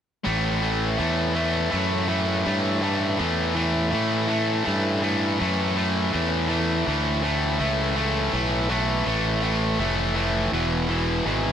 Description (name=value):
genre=rock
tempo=82 BPM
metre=4/4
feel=straight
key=unclear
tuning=A4 = 440 Hz
part: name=distorted electric guitar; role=riff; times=0.2-11.5 s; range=E2 to A3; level=-22 LUFS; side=equal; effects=overdrive
part: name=growling fingered electric bass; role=bass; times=0.3-11.5 s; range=E1 to A2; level=-26 LUFS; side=equal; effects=overdrive
room=light reverb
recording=none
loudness=-21 LUFS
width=side -8 dB against mid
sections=0.3-11.5 A section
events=none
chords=0.3 A7(no3); 10.5 E